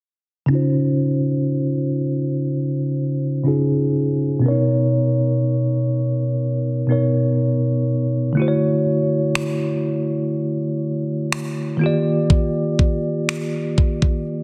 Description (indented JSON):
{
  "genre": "contemporary R&B",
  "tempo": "61 BPM",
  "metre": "4/4",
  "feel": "straight",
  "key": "unclear",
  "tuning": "A4 = 444 Hz",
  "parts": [
    { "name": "bell-like tine electric piano", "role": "accompaniment", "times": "0.5-14.4 s", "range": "Cb3 to D5", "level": "-20 LUFS", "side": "equal", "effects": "low-pass filter" },
    { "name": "trap drum kit", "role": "drums", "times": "9.4-14.2 s", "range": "finger snaps, kick drum", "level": "-21 LUFS", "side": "equal", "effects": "soft clipping on snare" }
  ],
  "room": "moderate lush hall reverb, RT60 2.2 s",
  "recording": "dense, heavily limited modern master",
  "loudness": "-20 LUFS",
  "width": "mono",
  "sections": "0.5-14.4 A section",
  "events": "filter sweep on tine electric piano 0.5-14.4",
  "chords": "0.5 Dbmaj9; 4.4 Cbmaj9; 8.4 Dmaj9; 11.8 Ebmaj9",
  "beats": "| 0.50 1.48 2.46 3.45 | 4.43 5.42 6.40 7.38 | 8.37 9.35 10.33 11.32 | 12.30 13.28 14.27"
}